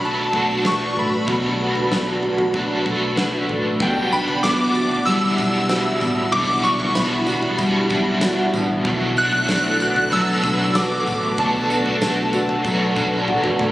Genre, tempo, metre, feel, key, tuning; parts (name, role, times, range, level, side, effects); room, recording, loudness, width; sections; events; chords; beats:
dream pop; 95 BPM; 4/4; straight; B minor; A4 = 439 Hz
shimmering bell with halo; melody; 0.0-12.6 s; G5 to F#6; -23 LUFS; equal; ensemble chorus, digital delay
cranked stack guitar; accompaniment; 0.0-13.7 s; B2 to F#4; -24 LUFS; equal; overdrive, tremolo, ensemble chorus
granular cloud pad; sustained chords; 0.0-13.7 s; E4 to B5; -26 LUFS; equal; built-in reverb
mellow electric guitar; arpeggios; 0.0-13.7 s; B2 to F#4; -22 LUFS; equal; analog chorus, digital delay
vintage muted fingered electric bass; bass; 0.0-13.7 s; A1 to B1; -30 LUFS; equal
huge arena drum kit; drums; 0.3-13.7 s; kick drum, snare drum, tambourine, toms; -27 LUFS; equal
moderate lush hall reverb, RT60 2.3 s; recorded on a phone in the room, club reverb; -17 LUFS; side -16 dB against mid
0.0-3.8 A section; 3.8-13.7 B section
drum fill 13.3-13.7
0.0 Bm7; 3.8 Em9; 8.9 Bm7
0.01 0.65 | 1.28 1.91 2.54 3.17 | 3.81 4.44 5.07 5.70 | 6.33 6.96 7.59 8.23 | 8.86 9.49 10.12 10.75 | 11.38 12.02 12.65 13.28